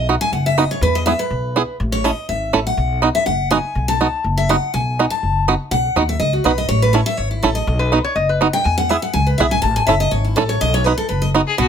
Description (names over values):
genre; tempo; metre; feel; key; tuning
bluegrass; 245 BPM; 4/4; swing 54% on 8ths; B mixolydian; A4 = 442 Hz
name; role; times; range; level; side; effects
picked steel-string acoustic guitar; accompaniment; 0.0-11.7 s; B2 to A5; -19 LUFS; left 2 dB; none
upright bass; bass; 0.0-11.7 s; F#1 to E2; -20 LUFS; left 1 dB; none
bluegrass banjo; melody; 0.1-11.7 s; B3 to A4; -17 LUFS; right 5 dB; none
lap resonator guitar; second line; 7.8-8.5 s; B4 to D#5; -20 LUFS; left 4 dB; none
clear fiddle; melody; 11.5-11.7 s; F#4 to G#4; -18 LUFS; left 6 dB; none
room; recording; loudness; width
little or no reverb; close, detailed microphones; -15 LUFS; side -8 dB against mid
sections
0.0-3.8 A section; 3.8-11.6 A section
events
steel-string acoustic guitar solo 0.0-11.6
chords
0.0 B; 0.8 E5; 1.8 A; 2.8 B5; 3.8 B; 6.7 A; 7.7 B; 8.6 E; 9.6 A; 10.6 B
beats
0.08 0.32 0.57 | 0.81 1.06 1.30 1.55 | 1.79 2.04 2.28 2.53 | 2.77 3.02 3.26 3.51 | 3.75 4.00 4.24 4.49 | 4.73 4.98 5.22 5.47 | 5.71 5.96 6.20 6.45 | 6.69 6.93 7.18 7.42 | 7.67 7.91 8.16 8.40 | 8.65 8.89 9.14 9.38 | 9.63 9.87 10.12 10.36 | 10.61 10.85 11.10 11.34 | 11.59